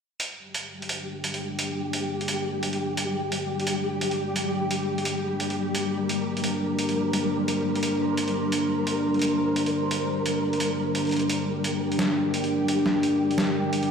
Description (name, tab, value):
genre	half-time drum and bass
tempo	173 BPM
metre	4/4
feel	swing 58% on 16ths, half-time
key	G minor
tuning	A4 = 440 Hz
part	deep dark ambient pad	sustained chords	0.9-13.9 s	G3 to C6	-26 LUFS	left 1 dB	chorus, built-in reverb, vintage 12-bit sampler grit
part	boom bap sampler-style drum kit	drums	0.2-13.9 s	hi-hat, snare drum	-30 LUFS	right 1 dB	none
part	flickering grainy texture	texture	0.8-13.9 s	G3 to Bb4	-29 LUFS	equal	built-in reverb
room	wet echo chamber reverb, RT60 1.9 s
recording	played on a big sound system in a bare room, large studio reverb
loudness	-24 LUFS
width	side -6 dB against mid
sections	0.2-13.9 A section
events	none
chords	0.2 Gm